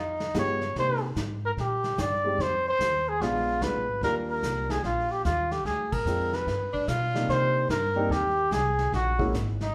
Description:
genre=jazz, small-group swing and bop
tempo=147 BPM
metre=4/4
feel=swing 65% on 8ths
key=Eb major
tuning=A4 = 439 Hz
part: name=dark trumpet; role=melody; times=0.0-9.7 s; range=Eb4 to D5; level=-29 LUFS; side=equal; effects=none
part: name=upright bass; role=bass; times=0.0-9.7 s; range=Ab1 to C3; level=-34 LUFS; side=equal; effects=none
part: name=vintage brush drum kit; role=drums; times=0.2-9.7 s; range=brushed snare drum, hi-hat, kick drum, ride cymbal, snare drum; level=-38 LUFS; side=equal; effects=none
part: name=warm concert grand piano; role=accompaniment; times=0.3-9.3 s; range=C3 to G4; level=-35 LUFS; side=equal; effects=none
part: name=clear tenor saxophone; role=second line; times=6.7-7.3 s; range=D4 to F4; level=-32 LUFS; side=equal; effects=none
room=wet large studio reverb, RT60 0.9 s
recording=band playing live in one room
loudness=-27 LUFS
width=mono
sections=0.0-7.3 A section; 7.3-9.7 B section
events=band accent 5.9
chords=0.0 Db7#11; 0.8 Cm9; 2.4 F5; 3.2 Bb7b9; 4.0 Ebmaj9; 5.7 Dm7b5; 6.5 G7; 7.3 Cm9; 8.9 F#9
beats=0.35 | 0.76 1.17 1.57 1.98 | 2.39 2.80 3.21 3.62 | 4.03 4.43 4.84 5.25 | 5.66 6.07 6.48 6.88 | 7.29 7.70 8.11 8.52 | 8.93 9.33 9.74

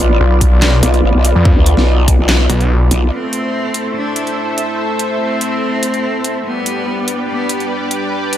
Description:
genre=heavy wobble dubstep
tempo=144 BPM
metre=4/4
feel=half-time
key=A minor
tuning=A4 = 440 Hz
part: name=supersaw pad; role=sustained chords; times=0.0-8.4 s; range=G3 to E5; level=-20 LUFS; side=equal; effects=analog chorus, sidechain pumping, low-pass filter
part: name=growl bass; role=bass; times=0.0-3.1 s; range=A1 to D2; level=-11 LUFS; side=equal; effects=chorus, overdrive
part: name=dubstep drum kit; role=drums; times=0.0-8.4 s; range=handclaps, hi-hat, snare drum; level=-18 LUFS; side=equal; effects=overdrive
part: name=warbly tape-like pad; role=texture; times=0.0-8.4 s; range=D4 to B5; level=-22 LUFS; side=left 1 dB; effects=chorus, built-in reverb, sidechain pumping
part: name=snarling distorted saw bass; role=bass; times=0.2-2.9 s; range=B1 to F2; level=-12 LUFS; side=equal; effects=distortion, overdrive
part: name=electronic kick drum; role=drums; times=0.4-2.2 s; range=none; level=-13 LUFS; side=equal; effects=overdrive
part: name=rich cello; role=melody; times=3.1-7.8 s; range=B3 to D4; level=-21 LUFS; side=left 1 dB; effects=diffuse ambient delay
room=moderate plate reverb, RT60 1.2 s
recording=dreamy mix soaked in reverb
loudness=-12 LUFS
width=side -11 dB against mid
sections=0.0-3.1 A section; 3.1-8.4 B section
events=drop 0.0-3.1; kick drops out 2.3-3.1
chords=0.0 Bdim; 3.1 Am; 6.5 G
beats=0.20 0.62 1.04 | 1.45 1.87 2.29 2.70 | 3.12 3.54 3.95 4.37 | 4.79 5.20 5.62 6.04 | 6.45 6.87 7.29 7.70 | 8.12

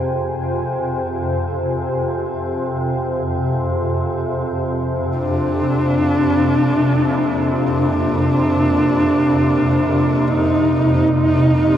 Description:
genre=dark ambient drone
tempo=free time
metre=none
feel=none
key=unclear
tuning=A4 = 439 Hz
part: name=deep dark ambient pad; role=sustained chords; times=0.0-11.8 s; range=Bb3 to Ab5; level=-24 LUFS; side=equal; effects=chorus, built-in reverb
part: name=swarming drone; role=drone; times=0.0-11.8 s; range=F2 to C3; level=-19 LUFS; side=equal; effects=built-in reverb
part: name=warm horsehead fiddle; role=melody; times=5.2-11.8 s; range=D4 to Eb4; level=-17 LUFS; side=equal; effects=diffuse ambient delay
room=wet huge ambient reverb, RT60 8.2 s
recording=worn, warbling old tape, cassette tape, warbly pitch drift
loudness=-16 LUFS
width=side -10 dB against mid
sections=0.0-11.8 A section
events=none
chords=0.0 Fm; 5.2 Bb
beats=free time

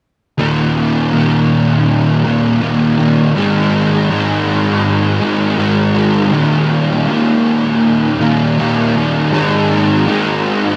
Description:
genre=rock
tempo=80 BPM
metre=4/4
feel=straight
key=unclear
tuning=A4 = 437 Hz
part: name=fuzz guitar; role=solo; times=0.4-10.8 s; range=Eb2 to Ab3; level=-14 LUFS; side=equal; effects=distortion, analog chorus, tape echo
room=wet huge ambient reverb, RT60 7.3 s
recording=dreamy mix soaked in reverb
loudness=-14 LUFS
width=mono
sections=0.4-10.8 A section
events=none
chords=0.4 Eb5; 3.4 Ab5; 6.3 Eb5; 9.3 Ab5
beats=| 0.39 1.13 1.87 2.62 | 3.36 4.10 4.85 5.59 | 6.34 7.08 7.83 8.58 | 9.32 10.07

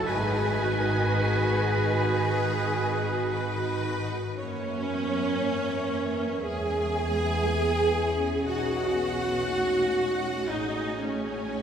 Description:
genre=cinematic, emotional film score for orchestra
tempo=55-60 BPM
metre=4/4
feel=rubato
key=unclear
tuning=A4 = 440 Hz
part: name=dark symphonic violin section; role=melody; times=0.0-11.6 s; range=D#5 to G#5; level=-39 LUFS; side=left 2 dB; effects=none
part: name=clear studio violin section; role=second line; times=0.0-11.6 s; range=F#4 to G#5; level=-34 LUFS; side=left 2 dB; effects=none
part: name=mellow clarinet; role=second line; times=0.0-4.0 s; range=F#4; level=-36 LUFS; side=equal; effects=none
part: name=silver concert flute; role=second line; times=0.0-3.3 s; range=none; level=barely audible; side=none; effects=none
part: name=warm oboe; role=second line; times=0.0-4.0 s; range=B4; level=-35 LUFS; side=right 3 dB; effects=none
part: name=clear symphonic viola section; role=accompaniment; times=0.0-11.6 s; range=C#4 to G#4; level=-28 LUFS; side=right 1 dB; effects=none
part: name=warm symphonic cello section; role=bass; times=0.0-11.6 s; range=G#3 to B4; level=-35 LUFS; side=right 2 dB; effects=none
part: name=warm symphonic double bass section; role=bass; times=0.0-11.6 s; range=G#1 to F#2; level=-32 LUFS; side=right 2 dB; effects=none
part: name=dark French horn section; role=sustained chords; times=0.1-11.6 s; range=E3 to A#4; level=-35 LUFS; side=left 3 dB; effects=none
room=wet cathedral reverb, RT60 4.8 s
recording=recorded in a church or concert hall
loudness=-24 LUFS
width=side -8 dB against mid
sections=0.0-4.4 A section; 4.4-11.6 B section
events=none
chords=0.1 G#m7; 4.4 F#7; 6.4 E; 8.5 Badd9; 10.5 Amaj7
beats=| 0.08 1.17 2.25 3.31 | 4.36 5.38 6.43 7.46 | 8.47 9.48 10.51 11.53

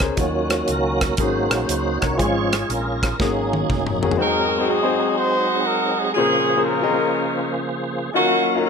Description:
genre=uptempo gospel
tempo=121 BPM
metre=4/4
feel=swing 66% on 8ths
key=unclear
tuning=A4 = 438 Hz
part: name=warm grand piano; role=accompaniment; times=0.0-8.7 s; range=Ab2 to Eb5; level=-24 LUFS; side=left 5 dB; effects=none
part: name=hollow-body short-scale fingered electric bass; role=bass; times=0.0-4.1 s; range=Gb1 to Eb2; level=-28 LUFS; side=equal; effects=none
part: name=modern studio drum kit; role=drums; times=0.0-4.2 s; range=hi-hat, kick drum, rim click, snare drum, toms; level=-23 LUFS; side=equal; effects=none
part: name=tonewheel organ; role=sustained chords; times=0.2-8.7 s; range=Db3 to F5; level=-23 LUFS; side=right 2 dB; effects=slow rotary speaker, chorus vibrato
part: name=warm horn section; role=melody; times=4.2-8.7 s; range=Bb3 to C5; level=-20 LUFS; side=equal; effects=none
room=light reverb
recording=none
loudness=-18 LUFS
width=side -6 dB against mid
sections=0.0-4.2 A section; 4.2-8.7 B section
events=grand piano fill 0.0; tonewheel organ solo 0.0-4.2; drum fill 3.2-4.2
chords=0.2 Ebm9; 1.2 Ab9sus4; 2.2 Db/Ab; 3.2 Ab9sus4; 4.2 Ab7; 6.2 Bbm9; 8.2 Ebm9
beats=| 0.18 0.68 1.19 1.69 | 2.19 2.69 3.19 3.69 | 4.19 4.69 5.18 5.68 | 6.17 6.67 7.16 7.66 | 8.15 8.64

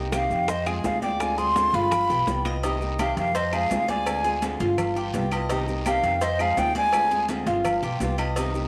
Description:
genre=latin, Cuban son and guajira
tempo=168 BPM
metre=4/4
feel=straight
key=C minor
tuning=A4 = 440 Hz
part: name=nylon-string guitar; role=accompaniment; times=0.0-8.7 s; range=C3 to G4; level=-33 LUFS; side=equal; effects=none
part: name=Cuban tres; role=arpeggios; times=0.0-8.7 s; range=Eb4 to Eb5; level=-32 LUFS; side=equal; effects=none
part: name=upright bass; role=bass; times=0.0-8.7 s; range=G1 to F2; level=-33 LUFS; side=equal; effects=none
part: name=breathy jazz flute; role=melody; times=0.1-7.3 s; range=Eb5 to C6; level=-26 LUFS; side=equal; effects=none
part: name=bongos and cowbell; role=percussion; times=0.1-8.5 s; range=none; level=-39 LUFS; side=equal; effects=none
part: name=claves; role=percussion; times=0.1-8.4 s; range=none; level=-42 LUFS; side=equal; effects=none
part: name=congas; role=percussion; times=0.1-8.7 s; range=none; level=-39 LUFS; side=equal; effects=none
part: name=guiro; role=percussion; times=0.1-8.7 s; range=none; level=-46 LUFS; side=equal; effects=none
part: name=maracas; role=percussion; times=0.1-8.7 s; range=none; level=-48 LUFS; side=equal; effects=none
part: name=timbales and agogo bells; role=percussion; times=0.1-8.5 s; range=none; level=-38 LUFS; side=equal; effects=none
room=wet echo chamber reverb, RT60 1.5 s, studio ambience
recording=none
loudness=-24 LUFS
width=mono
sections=0.0-2.6 A section; 2.6-8.7 A section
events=none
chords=0.5 Fm7; 1.2 Dm7b5; 1.9 G7; 2.6 Cm7; 3.4 Fm7; 4.1 Dm7b5; 4.8 G7; 5.5 Cm7; 6.2 Fm7; 6.9 Dm7b5; 7.7 G7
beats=0.13 0.49 0.84 | 1.20 1.56 1.92 2.28 | 2.63 2.99 3.35 3.71 | 4.07 4.42 4.78 5.14 | 5.50 5.86 6.22 6.58 | 6.93 7.29 7.65 8.01 | 8.37

